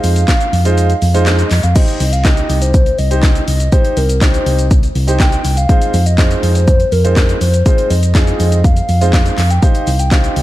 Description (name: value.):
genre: dance-pop.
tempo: 122 BPM.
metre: 4/4.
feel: straight.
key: F minor.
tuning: A4 = 440 Hz.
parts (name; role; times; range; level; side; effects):
hollow clarinet-like synth lead; melody; 0.0-10.4 s; Bb4 to G5; -20 LUFS; equal; chorus, dub echo.
clear grand piano; accompaniment; 0.0-10.4 s; Ab3 to Eb5; -20 LUFS; right 2 dB; sidechain pumping.
fingered electric bass; bass; 0.0-10.4 s; C2 to F2; -14 LUFS; equal; sidechain pumping.
house drum kit; drums; 0.0-10.4 s; crash cymbal, handclaps, hi-hat, kick drum, shaker, snare drum; -14 LUFS; equal; none.
room: little or no reverb.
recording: dark, warm production.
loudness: -10 LUFS.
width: side -15 dB against mid.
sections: 0.0-1.8 A section; 1.8-10.4 B section.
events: kick muted 0.8-1.8.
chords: 0.0 Fm7; 1.8 Cm; 5.7 Fm7; 9.6 Cm.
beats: 0.28 0.77 1.27 | 1.76 2.25 2.74 3.23 | 3.73 4.22 4.71 5.20 | 5.69 6.18 6.67 7.17 | 7.66 8.15 8.64 9.13 | 9.63 10.12.